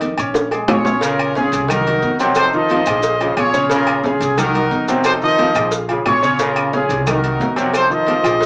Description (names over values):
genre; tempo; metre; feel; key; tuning
latin, salsa; 179 BPM; 4/4; straight; Bb minor; A4 = 443 Hz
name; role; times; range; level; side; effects
clear grand piano; accompaniment; 0.0-8.5 s; C3 to Db6; -23 LUFS; equal; none
upright bass; bass; 0.0-8.5 s; Bb1 to F2; -30 LUFS; equal; none
agogo bells and timbales; percussion; 0.0-8.4 s; none; -27 LUFS; equal; none
congas; percussion; 0.0-8.5 s; none; -29 LUFS; equal; none
cowbell and bongos; percussion; 0.0-8.5 s; none; -26 LUFS; equal; none
maracas; percussion; 0.0-8.5 s; none; -35 LUFS; equal; none
claves; percussion; 0.2-8.4 s; none; -32 LUFS; equal; none
clear trumpet section; melody; 0.7-8.5 s; Db4 to Eb5; -20 LUFS; equal; none
bright trombone section; second line; 1.0-8.3 s; Db3 to Gb3; -26 LUFS; equal; none
room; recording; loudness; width
wet small room ambience, RT60 0.5 s; band playing live in one room, small speaker sound; -16 LUFS; mono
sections
0.0-1.0 A section; 1.0-8.5 B section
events
drum fill 0.3-1.0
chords
0.3 Bbm7; 1.7 Cm7b5; 2.4 F7; 3.0 Bbm7; 4.4 Cm7b5; 5.1 F7; 5.7 Bbm7; 7.1 Cm7b5; 7.7 F7